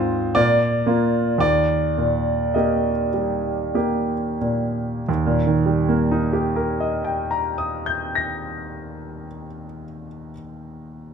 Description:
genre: classical, romantic nocturne for solo piano.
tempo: 43-65 BPM.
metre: 3/4.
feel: rubato.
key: Eb major.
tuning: A4 = 442 Hz.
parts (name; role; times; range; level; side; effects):
clear concert grand piano; solo; 0.0-11.1 s; Eb2 to Bb6; -20 LUFS; right 1 dB; none.
room: moderate recital hall reverb, RT60 1.6 s.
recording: close, detailed microphones.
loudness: -19 LUFS.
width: side -6 dB against mid.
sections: 0.0-5.1 A section; 5.1-8.9 B section.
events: slowing down 0.0-5.1.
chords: 0.4 Bb; 1.4 Eb.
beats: 0.36 | 1.40 2.53 3.74 | 5.07 6.32 7.57.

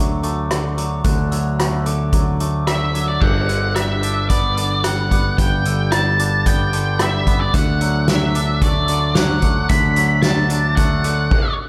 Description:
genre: post-rock.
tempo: 111 BPM.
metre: 4/4.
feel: straight.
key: G major.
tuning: A4 = 440 Hz.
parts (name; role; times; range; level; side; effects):
glockenspiel with soft plastic mallets; arpeggios; 0.0-11.6 s; D6 to G6; -34 LUFS; equal; slapback echo, analog delay.
twangy electric guitar; arpeggios; 0.0-11.3 s; G2 to D4; -27 LUFS; equal; slapback echo, analog delay.
growling picked electric bass; bass; 0.0-11.3 s; G1 to D2; -23 LUFS; equal; overdrive.
soft-mallet drum kit; drums; 0.2-11.4 s; crash cymbal, hi-hat, kick drum, rim click, snare drum; -22 LUFS; equal; none.
octave-fuzz lead guitar; melody; 2.7-11.5 s; D5 to B5; -24 LUFS; equal; distortion.
room: light reverb, small room ambience.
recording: none.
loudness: -18 LUFS.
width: mono.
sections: 0.0-3.2 A section; 3.2-11.7 B section.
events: none.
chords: 0.0 D; 3.2 G; 7.5 D.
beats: 0.51 | 1.05 1.59 2.13 2.68 | 3.22 3.76 4.30 4.84 | 5.38 5.92 6.46 7.00 | 7.54 8.08 8.62 9.16 | 9.70 10.24 10.78 11.31.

